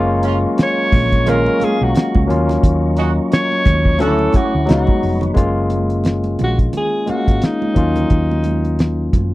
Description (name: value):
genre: lush 1970s-style soul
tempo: 88 BPM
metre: 4/4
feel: swing 58% on 16ths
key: F# major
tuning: A4 = 441 Hz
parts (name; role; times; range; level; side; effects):
- barky tine electric piano; accompaniment; 0.0-9.3 s; F#3 to E#5; -19 LUFS; left 2 dB; overdrive
- mellow tonewheel organ; sustained chords; 0.0-5.4 s; F#3 to D6; -28 LUFS; equal; fast rotary speaker, chorus vibrato
- hollow-body short-scale fingered electric bass; bass; 0.0-9.3 s; E#1 to F#2; -19 LUFS; equal; none
- mellow horn section; stabs; 0.2-4.5 s; A3 to F#4; -24 LUFS; right 6 dB; none
- cloth-damped thuddy drum kit; drums; 0.2-9.3 s; hi-hat, kick drum, snare drum; -15 LUFS; equal; none
- breathy alto saxophone; melody; 0.6-9.1 s; D#4 to C#5; -20 LUFS; equal; slapback echo
- congas; percussion; 0.9-9.3 s; none; -27 LUFS; right 7 dB; none
room: little or no reverb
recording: dry, close 1970s-style studio recording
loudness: -13 LUFS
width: side -18 dB against mid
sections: 0.0-5.4 A section; 5.4-9.3 B section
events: alto saxophone solo 5.4-9.3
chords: 0.0 F#maj7; 2.3 D#m7; 4.0 Dmaj9; 4.7 C#9sus4; 5.4 F#maj7; 7.8 D#m7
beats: 0.59 1.27 1.95 | 2.63 3.32 4.00 4.68 | 5.37 6.05 6.74 7.42 | 8.11 8.79